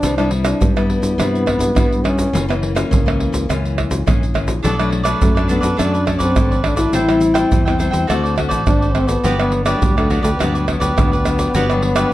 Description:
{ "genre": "samba and choro", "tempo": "104 BPM", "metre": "4/4", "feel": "straight", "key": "G major", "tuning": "A4 = 436 Hz", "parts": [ { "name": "mellow trombone", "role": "melody", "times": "0.0-12.1 s", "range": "G3 to E4", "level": "-20 LUFS", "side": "left 1 dB", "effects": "none" }, { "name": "nylon-string guitar", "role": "accompaniment", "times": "0.0-12.1 s", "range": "F#2 to F#4", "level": "-22 LUFS", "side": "left 4 dB", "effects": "none" }, { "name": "modern bright fingered electric bass", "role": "bass", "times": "0.0-12.0 s", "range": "F#1 to G2", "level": "-21 LUFS", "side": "equal", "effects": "none" }, { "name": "tube shaker, surdo, pandeiro and tamborim", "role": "percussion", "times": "0.0-12.1 s", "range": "none", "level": "-19 LUFS", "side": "right 1 dB", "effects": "none" }, { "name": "cavaquinho", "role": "accompaniment", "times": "4.6-12.1 s", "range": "D4 to G5", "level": "-22 LUFS", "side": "right 1 dB", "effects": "none" } ], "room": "light reverb", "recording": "dark, warm production", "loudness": "-14 LUFS", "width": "side -15 dB against mid", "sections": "0.0-12.1 A section", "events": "none", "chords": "0.0 Cmaj7; 2.3 F#7; 4.6 Bm7; 6.9 Am7; 8.1 D7; 9.2 Gmaj7", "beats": "| 0.04 0.61 1.19 1.76 | 2.34 2.91 3.49 4.07 | 4.64 5.22 5.79 6.37 | 6.95 7.52 8.10 8.67 | 9.25 9.82 10.40 10.98 | 11.55 12.13" }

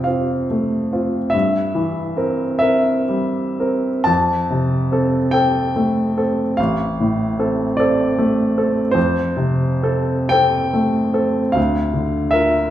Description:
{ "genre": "classical, romantic nocturne for solo piano", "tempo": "39-52 BPM (dotted quarters)", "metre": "12/8", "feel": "rubato", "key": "F major", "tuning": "A4 = 440 Hz", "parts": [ { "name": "clear baby grand piano", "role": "solo", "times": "0.0-12.7 s", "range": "A1 to A5", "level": "-16 LUFS", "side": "equal", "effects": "none" } ], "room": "wet recital hall reverb, RT60 1.6 s", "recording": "heard from further back in the room", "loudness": "-16 LUFS", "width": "side -12 dB against mid", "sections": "0.0-12.7 A section", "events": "none", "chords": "0.0 F; 1.3 C7/G; 4.1 F; 6.6 F/A; 9.0 F; 11.6 Bb/D", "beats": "0.08 1.34 2.61 | 4.08 5.34 6.58 7.80 | 8.96 10.33 11.57" }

